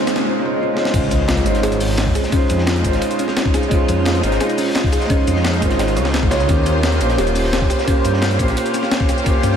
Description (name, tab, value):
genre	liquid drum and bass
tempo	173 BPM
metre	4/4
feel	straight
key	Db lydian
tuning	A4 = 440 Hz
part	felt-muted upright piano	accompaniment	0.0-9.6 s	Ab3 to Db5	-20 LUFS	right 2 dB	vintage 12-bit sampler grit, ping-pong delay
part	shimmering ambient pad	sustained chords	0.0-9.6 s	Db3 to F5	-25 LUFS	equal	chorus, built-in reverb, phaser, vintage 12-bit sampler grit
part	riser and impact	sound effects	0.0-2.3 s	none	-26 LUFS	left 1 dB	none
part	thumb-piano-like synth pluck	arpeggios	0.1-9.6 s	C4 to Db5	-25 LUFS	left 1 dB	chorus, tape echo
part	breakbeat sampler-style drum kit	drums	0.1-9.5 s	crash cymbal, hi-hat, shaker, snare drum	-24 LUFS	left 1 dB	none
part	crunchy breakbeat drum kit	drums	0.1-9.5 s	hi-hat, ride cymbal, snare drum	-28 LUFS	equal	high-pass filter on cymbals, high-pass filter on hats, high-pass filter on snare, high-pass filter on room
part	swelling detuned saw bass	bass	0.9-9.6 s	Eb1 to G2	-19 LUFS	left 1 dB	none
part	electronic kick drum	drums	0.9-9.3 s	none	-19 LUFS	left 1 dB	none
room	moderate lush hall reverb, RT60 2.2 s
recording	dreamy mix soaked in reverb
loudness	-15 LUFS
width	side -8 dB against mid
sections	0.9-9.6 A section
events	drum fill 0.0, 0.8; drop 0.9-9.6; impact 0.9-2.3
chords	0.0 Dbmaj7; 6.5 Eb13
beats	0.24 0.59 | 0.94 1.29 1.63 1.98 | 2.33 2.67 3.02 3.37 | 3.71 4.06 4.41 4.75 | 5.10 5.45 5.79 6.14 | 6.49 6.83 7.18 7.53 | 7.88 8.22 8.57 8.92 | 9.26